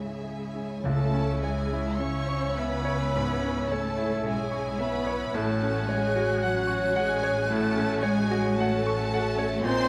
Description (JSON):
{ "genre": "classical, romantic movement for piano and orchestra", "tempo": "46-58 BPM", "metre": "4/4", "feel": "rubato", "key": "C# minor", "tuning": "A4 = 439 Hz", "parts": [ { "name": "clear concert grand piano", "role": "melody", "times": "0.0-9.9 s", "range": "C#2 to C#6", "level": "-33 LUFS", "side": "equal", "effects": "none" }, { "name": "warm symphonic violin section", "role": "melody", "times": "0.0-9.9 s", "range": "C#5 to C#6", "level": "-40 LUFS", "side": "equal", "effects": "none" }, { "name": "warm symphonic violin section", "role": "second line", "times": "0.0-9.9 s", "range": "C#4 to E5", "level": "-40 LUFS", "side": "equal", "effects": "none" }, { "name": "warm symphonic viola section", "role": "accompaniment", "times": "0.0-9.9 s", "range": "G#3 to C#5", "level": "-38 LUFS", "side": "equal", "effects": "none" }, { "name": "mellow French horn section", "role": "sustained chords", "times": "0.0-9.9 s", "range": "F#3 to C#4", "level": "-37 LUFS", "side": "equal", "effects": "none" }, { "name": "rich symphonic cello section", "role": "bass", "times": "0.0-9.9 s", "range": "C#3 to C#4", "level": "-36 LUFS", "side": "equal", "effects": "none" }, { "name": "bright silver concert flute", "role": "second line", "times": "0.8-9.9 s", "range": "E6 to G6", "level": "-39 LUFS", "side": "equal", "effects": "none" }, { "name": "warm clarinet", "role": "second line", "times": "0.8-9.9 s", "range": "C#5 to D#5", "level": "-39 LUFS", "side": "equal", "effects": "none" }, { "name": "mellow bassoon", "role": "accompaniment", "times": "0.8-9.9 s", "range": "C#4", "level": "-37 LUFS", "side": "equal", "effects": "none" }, { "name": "rich studio double bass section", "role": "bass", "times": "0.8-9.9 s", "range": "A1 to C#2", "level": "-36 LUFS", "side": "equal", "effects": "none" }, { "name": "timpani", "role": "percussion", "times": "0.8-2.5 s", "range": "C#3", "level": "-35 LUFS", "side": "equal", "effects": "none" } ], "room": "wet recital hall reverb, RT60 1.5 s", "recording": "none", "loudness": "-27 LUFS", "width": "mono", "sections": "0.8-9.9 A section", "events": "none", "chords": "0.0 C#m; 5.4 F#m/A" }